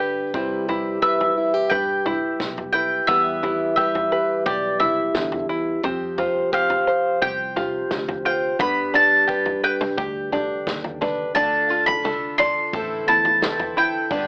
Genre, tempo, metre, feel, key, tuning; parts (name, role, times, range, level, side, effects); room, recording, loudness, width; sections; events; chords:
indie folk with a building arrangement; 87 BPM; 4/4; straight; C major; A4 = 440 Hz
fingerpicked plugged-in steel-string acoustic guitar; accompaniment; 0.0-14.1 s; B2 to C5; -25 LUFS; equal
open-back banjo; arpeggios; 0.0-14.3 s; B3 to D5; -26 LUFS; equal
picked electric bass; bass; 0.3-14.3 s; G1 to G2; -37 LUFS; equal
natural country drum kit; drums; 0.3-14.3 s; kick drum, snare drum, toms; -28 LUFS; equal; cassette tape
mandolin; melody; 1.0-14.3 s; D5 to C6; -20 LUFS; equal; cassette tape
picked twelve-string acoustic guitar; accompaniment; 11.3-14.3 s; G2 to A4; -28 LUFS; equal; lush chorus
light reverb; home recording on cassette, AM radio sound; -18 LUFS; side -39 dB against mid
0.0-11.4 A section; 11.4-14.3 B section
0.3 Cmaj7; 3.1 Em; 5.8 Fsus2; 8.6 G; 11.4 Dm; 12.7 Am